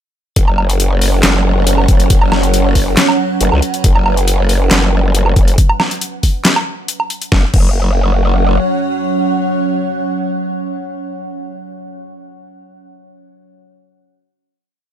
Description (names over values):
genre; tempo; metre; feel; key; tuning
heavy wobble dubstep; 138 BPM; 4/4; half-time; unclear; A4 = 441 Hz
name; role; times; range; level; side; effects
evolving wavetable pad; sustained chords; 0.7-11.6 s; F#3 to F#5; -18 LUFS; right 2 dB; chorus, built-in reverb, sidechain pumping
growl bass; bass; 0.4-8.6 s; F#1 to C#2; -13 LUFS; equal; chorus, overdrive
dubstep drum kit; drums; 0.4-7.7 s; crash cymbal, handclaps, hi-hat, snare drum, woodblock; -16 LUFS; equal; overdrive, small room ambience
electronic kick drum; drums; 0.4-7.7 s; none; -11 LUFS; equal; overdrive, small room ambience
room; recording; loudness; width
little or no reverb; none; -11 LUFS; side -10 dB against mid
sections
0.4-7.3 drop; 7.3-10.8 final chord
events
drop 0.4-7.3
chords
0.4 F#5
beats
| 0.36 0.80 1.23 1.67 | 2.10 2.54 2.97 3.41 | 3.84 4.28 4.71 5.15 | 5.58 6.01 6.45 6.88 | 7.32 7.75 8.19 8.62 | 9.06 9.49 9.93 10.36